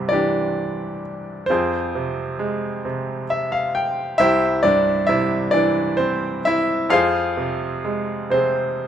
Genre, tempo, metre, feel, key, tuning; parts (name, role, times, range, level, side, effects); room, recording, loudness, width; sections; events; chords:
classical, lyrical solo piano; 42-45 BPM (dotted quarters); 6/8; rubato; C major; A4 = 439 Hz
bright baby grand piano; solo; 0.0-8.9 s; C2 to G5; -18 LUFS; equal
moderate recital hall reverb, RT60 1.4 s; close, detailed microphones; -18 LUFS; side -9 dB against mid
0.0-8.9 A section
grand piano fill 2.8-4.2
0.0 C; 1.5 Fm; 4.2 C; 6.9 Fm